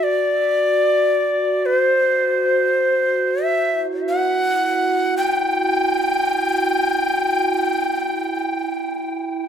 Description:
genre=world meditative, free-time meditation music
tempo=free time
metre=none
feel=none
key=unclear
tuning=A4 = 440 Hz
part: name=breathy bright Native American-style cedar flute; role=melody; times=0.0-9.5 s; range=C5 to G5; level=-18 LUFS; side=left 2 dB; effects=plate reverb, diffuse ambient delay
part: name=glass harmonica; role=texture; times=0.0-9.5 s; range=E4 to F#4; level=-23 LUFS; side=right 5 dB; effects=plate reverb
room=wet booth ambience, RT60 0.2 s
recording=none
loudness=-17 LUFS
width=side -8 dB against mid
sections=0.0-9.5 A section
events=none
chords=none

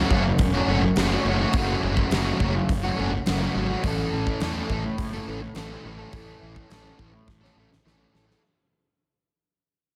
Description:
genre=rock, shoegaze and dream pop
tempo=105 BPM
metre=4/4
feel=straight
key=A major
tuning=A4 = 439 Hz
part: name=crunchy overdriven guitar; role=riff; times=0.0-8.4 s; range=F#2 to A4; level=-28 LUFS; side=equal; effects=analog chorus
part: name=fuzz fingered electric bass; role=bass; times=0.1-8.3 s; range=E1 to E2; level=-31 LUFS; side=equal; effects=overdrive
part: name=huge arena drum kit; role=drums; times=0.1-8.4 s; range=hi-hat, kick drum, snare drum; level=-30 LUFS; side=equal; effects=none
room=moderate concert hall reverb, RT60 2.2 s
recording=none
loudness=-24 LUFS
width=mono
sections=0.0-8.4 A section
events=fade-out 0.0-8.4; drum fill 7.3-8.4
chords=0.0 F#m; 3.8 A

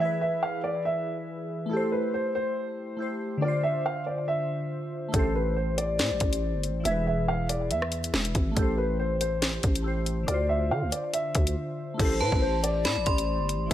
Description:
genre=hip hop, drill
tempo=140 BPM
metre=4/4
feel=half-time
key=A minor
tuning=A4 = 440 Hz
part: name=dark concert grand piano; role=melody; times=0.0-13.7 s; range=A4 to F5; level=-30 LUFS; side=equal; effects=none
part: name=glassy digital keys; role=accompaniment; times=0.0-13.7 s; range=D3 to C5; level=-32 LUFS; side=left 1 dB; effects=chorus
part: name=growling 808-style bass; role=bass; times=5.1-13.7 s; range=E1 to D3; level=-29 LUFS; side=equal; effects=none
part: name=drill drum kit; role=drums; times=5.1-13.7 s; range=crash cymbal, hi-hat, kick drum, rim click, snare drum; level=-27 LUFS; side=equal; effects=none
part: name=metallic FM bell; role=second line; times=12.2-13.7 s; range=A5 to C6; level=-31 LUFS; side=right 5 dB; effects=chorus, tape echo
room=little or no reverb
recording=none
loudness=-25 LUFS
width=side -12 dB against mid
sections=0.0-12.0 A section; 12.0-13.7 B section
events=break 11.6-12.0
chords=0.0 E; 1.7 Am7; 3.4 Dm7; 5.1 Am7; 6.9 E; 8.6 Am7; 10.3 Dm7; 12.0 Am7

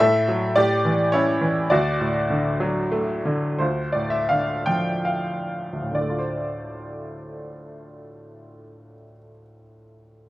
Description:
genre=classical, lyrical solo piano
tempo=61-107 BPM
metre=3/4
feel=rubato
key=D major, D minor from 3.6 s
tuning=A4 = 441 Hz
part: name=bright upright piano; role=solo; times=0.0-10.3 s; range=D2 to G5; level=-20 LUFS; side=equal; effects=none
room=light reverb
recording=close, detailed microphones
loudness=-20 LUFS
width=side -17 dB against mid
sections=0.0-3.6 A section; 3.6-6.0 B section; 6.0-10.3 C section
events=slowing down 1.7-6.0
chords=0.0 F#m7/A; 0.6 A7; 1.7 D; 3.6 Dm; 6.0 Dm7

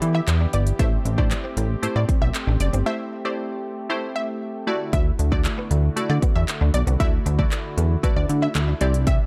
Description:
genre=dance-pop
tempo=116 BPM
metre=4/4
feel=straight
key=unclear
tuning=A4 = 440 Hz
part: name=wavetable chord stab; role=accompaniment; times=0.0-9.3 s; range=A3 to D5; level=-32 LUFS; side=equal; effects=sidechain pumping
part: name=warm analog pad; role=sustained chords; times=0.0-9.3 s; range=C3 to G4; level=-35 LUFS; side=equal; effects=chorus, sidechain pumping
part: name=direct-recorded clean electric guitar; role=riff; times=0.0-9.2 s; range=A3 to E4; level=-37 LUFS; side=equal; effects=ensemble chorus
part: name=chorused synth bass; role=bass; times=0.0-9.2 s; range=F#1 to E3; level=-23 LUFS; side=equal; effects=sidechain pumping
part: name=house drum kit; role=drums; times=0.0-9.2 s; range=handclaps, hi-hat, kick drum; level=-25 LUFS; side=equal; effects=none
part: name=unison pluck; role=melody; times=0.1-9.3 s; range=D5 to E5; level=-33 LUFS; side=equal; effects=dub echo
room=little or no reverb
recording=dark, warm production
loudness=-22 LUFS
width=mono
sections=0.0-9.3 A section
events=break 2.9-4.9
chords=0.0 Em7; 0.8 Am7; 4.7 Dadd9

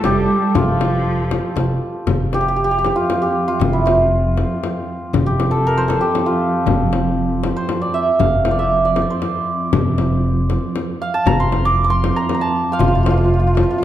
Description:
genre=Persian modal ensemble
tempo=117 BPM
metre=3/4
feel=straight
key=F dastgah mahur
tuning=A4 = 440 Hz
part: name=santur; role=melody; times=0.0-13.8 s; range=E4 to D6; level=-19 LUFS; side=right 1 dB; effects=none
part: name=warm cello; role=second line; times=0.0-1.6 s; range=F3 to G3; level=-21 LUFS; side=right 4 dB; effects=none
part: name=upright bass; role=bass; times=0.0-13.6 s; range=F1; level=-19 LUFS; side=equal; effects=none
part: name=frame drum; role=percussion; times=0.0-13.7 s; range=none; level=-22 LUFS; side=left 5 dB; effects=none
part: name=dark chamber cello section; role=drone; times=2.1-13.8 s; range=F2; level=-24 LUFS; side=right 2 dB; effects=none
room=wet recital hall reverb, RT60 1.6 s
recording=dark, warm production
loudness=-15 LUFS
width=side -12 dB against mid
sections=0.0-2.1 A section; 2.1-13.8 B section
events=none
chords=none

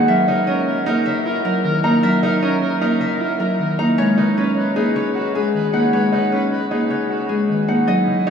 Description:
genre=classical, minimalist pattern music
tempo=154 BPM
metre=5/4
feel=straight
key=G# minor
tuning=A4 = 440 Hz
part: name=concert harp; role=melody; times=0.0-8.3 s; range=G#4 to A#5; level=-22 LUFS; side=left 3 dB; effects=none
part: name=buzzing marimba with medium mallets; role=accompaniment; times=0.0-8.3 s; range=C#3 to A#3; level=-19 LUFS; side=equal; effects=none
part: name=bright grand piano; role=arpeggios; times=0.0-8.3 s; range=C#4 to F#4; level=-23 LUFS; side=right 2 dB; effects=none
part: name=clear oboe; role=second line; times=0.1-8.3 s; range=E4 to B4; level=-27 LUFS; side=equal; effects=none
room=wet huge ambient reverb, RT60 8.0 s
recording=in a vast, echoing space, studio reverb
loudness=-16 LUFS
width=side -7 dB against mid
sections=0.0-7.9 A section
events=none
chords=0.1 F#7; 4.0 G#m11

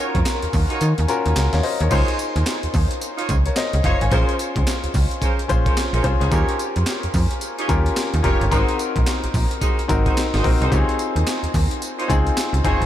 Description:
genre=R&B, new jack swing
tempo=109 BPM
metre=4/4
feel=swing 62% on 16ths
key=unclear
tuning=A4 = 440 Hz
part: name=clear grand piano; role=accompaniment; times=0.0-12.9 s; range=C4 to Ab5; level=-23 LUFS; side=left 4 dB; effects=none
part: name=warm horn section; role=stabs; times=0.0-12.8 s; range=Db4 to Db5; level=-28 LUFS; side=right 2 dB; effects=diffuse ambient delay
part: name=slap-like FM bass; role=bass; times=0.1-12.9 s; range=F1 to Eb3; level=-20 LUFS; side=equal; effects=none
part: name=breakbeat sampler-style drum kit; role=drums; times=0.1-12.9 s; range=crash cymbal, handclaps, hi-hat, kick drum, snare drum, tambourine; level=-22 LUFS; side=equal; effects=overdrive
room=light reverb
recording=none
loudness=-17 LUFS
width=side -12 dB against mid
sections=0.0-1.9 A section; 1.9-12.9 B section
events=kick muted 0.8-1.9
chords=0.0 Ebm7; 1.9 Dbmaj9; 4.1 Bbm9; 6.3 Eb9; 8.5 Ab7; 10.7 Dbmaj9

